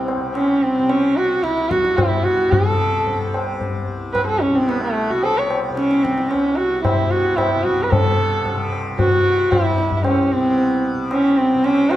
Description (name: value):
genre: indian classical, Hindustani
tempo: 112 BPM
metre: 5/4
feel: straight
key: C raga marwa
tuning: A4 = 441 Hz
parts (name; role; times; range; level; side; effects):
- dark sarangi; melody; 0.0-12.0 s; A3 to Db5; -17 LUFS; right 1 dB; none
- tanpura; drone; 0.0-12.0 s; C2 to C3; -27 LUFS; left 1 dB; none
- tabla; percussion; 0.1-12.0 s; none; -22 LUFS; left 2 dB; none
room: moderate recital hall reverb, RT60 1.3 s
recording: dark, warm production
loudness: -16 LUFS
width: side -13 dB against mid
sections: 0.0-7.9 A section; 7.9-12.0 B section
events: none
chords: none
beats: 0.34 0.89 1.43 1.97 | 2.52 3.06 3.60 4.14 4.68 | 5.22 5.76 6.30 6.83 7.37 | 7.91 8.44 8.98 9.51 10.04 | 10.58 11.11 11.64